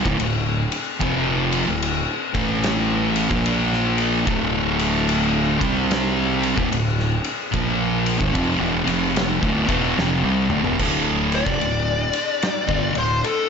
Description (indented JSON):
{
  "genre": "stoner and doom metal",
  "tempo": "74 BPM",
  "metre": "4/4",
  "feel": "swing 64% on 8ths",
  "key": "D minor",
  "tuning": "A4 = 441 Hz",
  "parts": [
    { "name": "thick fuzz guitar", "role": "riff", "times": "0.0-13.2 s", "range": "D2 to C4", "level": "-20 LUFS", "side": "equal", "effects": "distortion" },
    { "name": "fuzz fingered electric bass", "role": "bass", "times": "0.1-13.2 s", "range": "D1 to C2", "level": "-26 LUFS", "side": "equal", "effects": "overdrive" },
    { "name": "oversized low-tuned drum kit", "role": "drums", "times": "0.1-13.5 s", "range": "crash cymbal, kick drum, ride cymbal, snare drum, toms", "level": "-24 LUFS", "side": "left 1 dB", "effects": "none" },
    { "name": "fuzz lead guitar", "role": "melody", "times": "11.3-13.5 s", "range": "A4 to D5", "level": "-22 LUFS", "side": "left 4 dB", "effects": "wah, distortion" }
  ],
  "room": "light reverb, studio ambience",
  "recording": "nothing above 7.7 kHz",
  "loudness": "-18 LUFS",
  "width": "side -6 dB against mid",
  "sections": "0.0-10.8 A section; 10.8-13.5 B section",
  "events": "drum fill 10.0-10.8; lead electric guitar solo 10.8-13.5",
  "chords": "0.0 Dm; 2.2 A5; 3.2 Bb5; 4.3 D5; 5.5 C5; 6.5 Dm; 10.8 D5",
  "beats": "0.19 | 1.01 1.82 2.63 3.45 | 4.26 5.08 5.89 6.71 | 7.52 8.34 9.15 9.97 | 10.79 11.60 12.42 13.23"
}